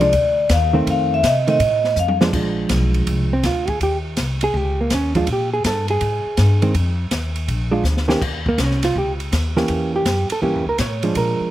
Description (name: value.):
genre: jazz, small-group swing and bop.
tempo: 163 BPM.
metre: 4/4.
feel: swing 66% on 8ths.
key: Bb mixolydian.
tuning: A4 = 442 Hz.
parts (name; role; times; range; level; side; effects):
vibraphone with medium hard mallets; melody; 0.0-2.1 s; D5 to F5; -17 LUFS; left 2 dB; slapback echo.
hollow-body jazz guitar; accompaniment; 0.0-11.5 s; Eb3 to C#5; -20 LUFS; right 2 dB; slapback echo.
upright bass; bass; 0.0-11.4 s; Bb1 to C3; -21 LUFS; equal; none.
open jazz drum kit; drums; 0.0-11.3 s; crash cymbal, hi-hat, kick drum, ride cymbal, snare drum, toms; -25 LUFS; equal; none.
room: little or no reverb.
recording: recorded outdoors, with no room sound.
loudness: -16 LUFS.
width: side -13 dB against mid.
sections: 0.0-2.3 A section; 2.3-11.5 A section.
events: vibraphone solo 0.0-2.3; drum fill 2.0-2.3, 7.8-8.2.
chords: 0.0 Bb7 (rootless); 0.9 F7; 2.3 Bb7; 3.8 Cmadd11; 5.3 Abmaj7sus2/G; 6.7 Ebsus2; 7.5 Bb7; 8.2 Eb7; 9.7 Edim7.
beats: 0.14 0.50 | 0.87 1.24 1.60 1.97 | 2.34 2.71 3.07 3.44 | 3.81 4.17 4.54 4.91 | 5.28 5.64 6.01 6.38 | 6.75 7.11 7.48 7.85 | 8.21 8.58 8.95 9.31 | 9.68 10.05 10.42 10.78 | 11.15.